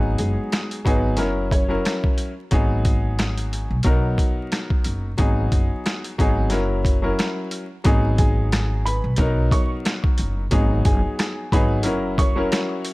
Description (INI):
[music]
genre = hip hop, boom-bap hip-hop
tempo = 90 BPM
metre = 4/4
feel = swing 54% on 16ths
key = G# minor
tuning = A4 = 440 Hz
[part]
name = warm concert grand piano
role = accompaniment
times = 0.0-12.9 s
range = F#3 to A#4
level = -24 LUFS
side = left 1 dB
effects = cassette tape, high-pass filter, low-pass filter
[part]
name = upright bass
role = bass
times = 0.0-12.4 s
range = F#1 to B1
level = -23 LUFS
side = equal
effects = none
[part]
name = dark upright piano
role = melody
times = 0.2-1.7, 8.2-12.4 s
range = G#3 to C#6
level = -29 LUFS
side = right 1 dB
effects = high-pass filter, low-pass filter, ping-pong delay
[part]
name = boom bap sampler-style drum kit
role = drums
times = 0.2-12.9 s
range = hi-hat, kick drum, rim click, snare drum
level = -21 LUFS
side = equal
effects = none
[sound]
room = studio reverb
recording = vinyl crackle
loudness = -18 LUFS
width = side -21 dB against mid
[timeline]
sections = 0.0-7.9 A section; 7.9-12.9 B section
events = none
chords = 0.0 G#m7; 1.2 F#7; 2.5 G#m7; 3.9 Bmaj7; 5.2 G#m7; 6.5 F#7; 7.9 G#m7; 9.2 Bmaj7; 10.5 G#m7; 11.9 F#7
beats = 0.52 1.19 1.85 | 2.52 3.19 3.85 4.52 | 5.18 5.85 6.52 7.18 | 7.85 8.52 9.19 9.85 | 10.52 11.19 11.85 12.52